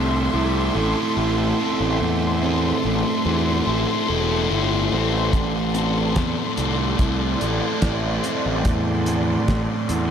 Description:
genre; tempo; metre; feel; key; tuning
psychedelic rock; 72 BPM; 4/4; straight; A minor; A4 = 440 Hz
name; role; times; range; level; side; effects
clear studio string section; sustained chords; 0.0-10.1 s; A4 to C6; -27 LUFS; left 1 dB; none
fuzz guitar; riff; 0.0-10.1 s; A2 to A4; -22 LUFS; right 1 dB; distortion, phaser
fuzz picked electric bass; bass; 0.0-10.1 s; E1 to E2; -23 LUFS; equal; overdrive
cloth-damped thuddy drum kit; drums; 5.3-10.1 s; hi-hat, kick drum, snare drum; -23 LUFS; equal; none
room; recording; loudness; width
light reverb, studio ambience; none; -19 LUFS; side -8 dB against mid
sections
0.0-10.1 A section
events
none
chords
0.0 Am

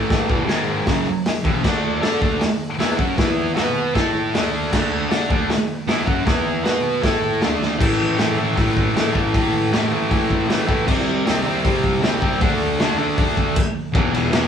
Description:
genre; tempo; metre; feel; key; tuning
garage rock duo or trio; 156 BPM; 4/4; straight; unclear; A4 = 439 Hz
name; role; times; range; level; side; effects
thick fuzz guitar; riff; 0.0-14.5 s; E2 to D5; -19 LUFS; equal; distortion
raw garage drum kit; drums; 0.1-14.4 s; crash cymbal, hi-hat, kick drum, ride cymbal, snare drum; -21 LUFS; equal; none
room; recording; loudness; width
moderate large studio reverb, RT60 1.2 s; band playing live in one room, small room ambience; -17 LUFS; side -8 dB against mid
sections
0.0-7.8 A section; 7.8-13.9 B section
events
drum fill 7.6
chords
0.3 E5; 0.5 G#5; 0.9 E5; 1.6 D5; 3.2 E5; 3.6 B5; 4.0 A5; 4.3 D5; 6.3 E5; 6.7 B5; 7.0 A5; 7.4 D5; 7.8 A5; 10.9 C5; 12.4 D5; 13.9 E5

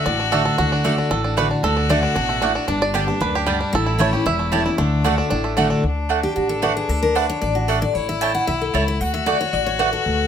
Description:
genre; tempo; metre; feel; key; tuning
bluegrass; 228 BPM; 4/4; straight; D major; A4 = 440 Hz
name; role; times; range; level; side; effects
bluegrass banjo; melody; 0.0-5.8 s; G3 to E5; -23 LUFS; right 4 dB; plate reverb
clear fiddle; second line; 0.0-10.3 s; D4 to F#4; -25 LUFS; left 4 dB; none
picked steel-string acoustic guitar; accompaniment; 0.0-10.3 s; E2 to G5; -22 LUFS; left 2 dB; none
upright bass; bass; 0.1-10.3 s; E1 to D2; -25 LUFS; equal; none
mandolin; stabs; 0.3-9.9 s; A3 to A5; -22 LUFS; right 6 dB; none
room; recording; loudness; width
moderate studio reverb, RT60 0.7 s; none; -17 LUFS; side -8 dB against mid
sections
0.0-5.8 A section; 5.8-10.3 A section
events
five-string banjo solo 0.0-5.8; steel-string acoustic guitar solo 5.8-10.3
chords
0.0 D; 2.7 G; 3.7 A; 4.8 D; 7.9 A; 9.0 D

